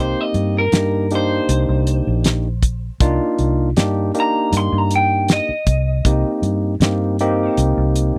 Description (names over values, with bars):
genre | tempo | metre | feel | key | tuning
straight-eighth soul blues | 79 BPM | 4/4 | straight | C minor | A4 = 439 Hz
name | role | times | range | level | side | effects
electric guitar through a small old amp | melody | 0.0-7.6 s | Bb4 to C6 | -23 LUFS | equal | none
barky tine electric piano | accompaniment | 0.0-8.2 s | Bb3 to G4 | -22 LUFS | equal | none
vintage muted fingered electric bass | bass | 0.0-8.2 s | Bb1 to G2 | -21 LUFS | equal | none
damped 70s drum kit | drums | 0.3-8.1 s | hi-hat, kick drum, snare drum | -20 LUFS | equal | none
room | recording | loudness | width
little or no reverb | dry, close 1970s-style studio recording | -18 LUFS | mono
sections
0.0-8.2 A section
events
none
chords
0.0 Cm7